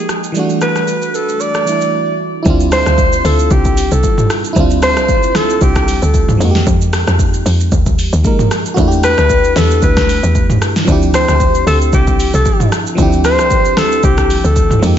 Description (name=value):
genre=amapiano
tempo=114 BPM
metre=4/4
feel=swing 55% on 16ths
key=unclear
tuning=A4 = 436 Hz
part: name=breathy alto saxophone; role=melody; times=0.0-14.8 s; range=G4 to D5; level=-15 LUFS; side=left 1 dB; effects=low-pass filter, analog delay
part: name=FM electric piano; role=accompaniment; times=0.0-15.0 s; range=E3 to Bb4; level=-18 LUFS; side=right 2 dB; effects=chorus, low-pass filter
part: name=deep house drum kit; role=drums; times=0.1-15.0 s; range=hi-hat, kick drum, rim click, shaker, snare drum, toms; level=-15 LUFS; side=equal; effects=none
part: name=woody log drum bass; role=bass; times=2.5-15.0 s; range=C2 to G2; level=-14 LUFS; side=equal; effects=none
room=moderate plate reverb, RT60 2.1 s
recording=dreamy mix soaked in reverb, nothing above 7.7 kHz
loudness=-10 LUFS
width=side -10 dB against mid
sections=0.0-2.5 A section; 2.5-15.0 B section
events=break 1.9-2.5; drop 2.5-15.0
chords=0.4 Em11; 2.5 Dm11; 6.4 Fm11; 8.8 Em11; 10.9 Dm11